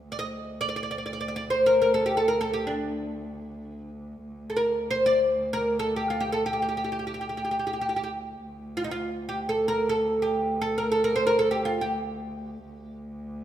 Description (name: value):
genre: Arabic maqam ensemble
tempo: free time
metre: none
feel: none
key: D maqam kurd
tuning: A4 = 440 Hz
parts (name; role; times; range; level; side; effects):
- muted cello; drone; 0.0-13.4 s; D2; -36 LUFS; equal; none
- oud; melody; 0.1-13.0 s; D4 to Eb5; -24 LUFS; equal; none
room: wet recital hall reverb, RT60 1.7 s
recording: minimal, uncompressed stereo recording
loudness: -24 LUFS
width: side -11 dB against mid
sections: 0.0-4.3 A section; 4.3-13.4 A section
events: none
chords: none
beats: free time